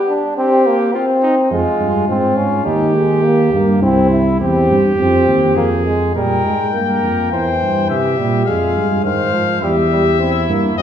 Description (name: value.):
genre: classical, imitative canzona for brass ensemble.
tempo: 104 BPM.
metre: 4/4.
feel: straight.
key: F minor.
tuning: A4 = 441 Hz.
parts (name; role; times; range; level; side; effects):
clear flugelhorn; second line; 0.0-10.8 s; Eb4 to C5; -19 LUFS; right 1 dB; none.
clear trombone; accompaniment; 0.1-10.8 s; Eb3 to E4; -17 LUFS; left 1 dB; none.
dark tuba; bass; 1.5-10.8 s; C2 to C3; -17 LUFS; right 2 dB; none.
bright trumpet; melody; 6.1-10.8 s; Eb5 to G5; -20 LUFS; left 8 dB; none.
room: wet recital hall reverb, RT60 1.6 s.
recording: recorded in a church or concert hall.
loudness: -13 LUFS.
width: side -9 dB against mid.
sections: 0.0-6.2 A section; 6.2-10.8 B section.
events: none.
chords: 0.4 C5; 1.5 Fm; 2.7 Eb; 3.8 C; 5.0 Fm; 6.2 Fsus24; 7.3 C/E; 8.5 Fm; 9.6 C/E (rootless).